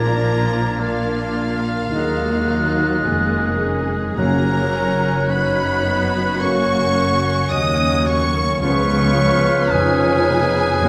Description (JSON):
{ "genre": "classical, slow romantic movement for symphony orchestra", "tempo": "54 BPM", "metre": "4/4", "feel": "rubato", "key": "unclear", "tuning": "A4 = 440 Hz", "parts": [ { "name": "warm symphonic violin section", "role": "melody", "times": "0.0-10.9 s", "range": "F5 to Eb6", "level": "-28 LUFS", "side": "equal", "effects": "none" }, { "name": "clear clarinet", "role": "second line", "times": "0.0-10.9 s", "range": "Bb4 to Eb5", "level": "-30 LUFS", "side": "equal", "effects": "none" }, { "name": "clear oboe", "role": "second line", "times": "0.0-10.9 s", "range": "F4 to Eb5", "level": "-27 LUFS", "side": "equal", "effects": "none" }, { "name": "concert flute", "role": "second line", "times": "0.0-10.9 s", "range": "F6 to Ab6", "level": "-29 LUFS", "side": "equal", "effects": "none" }, { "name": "warm symphonic violin section", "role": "second line", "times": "0.0-10.9 s", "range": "Db4 to Ab4", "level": "-31 LUFS", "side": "equal", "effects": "none" }, { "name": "dark bassoon", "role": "accompaniment", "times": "0.0-10.9 s", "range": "Bb3 to Db4", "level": "-28 LUFS", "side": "equal", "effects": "none" }, { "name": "warm symphonic viola section", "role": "accompaniment", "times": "0.0-10.9 s", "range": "F3 to D4", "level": "-26 LUFS", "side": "equal", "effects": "none" }, { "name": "dark French horn section", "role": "sustained chords", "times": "0.0-10.9 s", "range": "Bb3 to Eb4", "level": "-30 LUFS", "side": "equal", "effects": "none" }, { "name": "warm trombone section", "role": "sustained chords", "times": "0.0-10.9 s", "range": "Bb2 to Ab3", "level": "-32 LUFS", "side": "equal", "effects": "none" }, { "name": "concert harp", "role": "arpeggios", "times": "0.0-10.9 s", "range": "Gb2 to Cb5", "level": "-29 LUFS", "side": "equal", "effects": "none" }, { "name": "rich symphonic cello section", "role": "bass", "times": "0.0-10.9 s", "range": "Db2 to Bb2", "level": "-28 LUFS", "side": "equal", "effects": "none" }, { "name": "warm symphonic double bass section", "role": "bass", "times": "0.0-10.9 s", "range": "F1 to Eb2", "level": "-28 LUFS", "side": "equal", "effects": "none" }, { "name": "timpani", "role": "percussion", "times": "4.2-10.9 s", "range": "Gb2", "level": "-30 LUFS", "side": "equal", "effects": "none" } ], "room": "wet recital hall reverb, RT60 1.7 s", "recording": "none", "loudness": "-18 LUFS", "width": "mono", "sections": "0.0-10.9 A section", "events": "none", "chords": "0.0 Bb7; 1.9 Ebm; 4.2 Gb; 8.6 Db7" }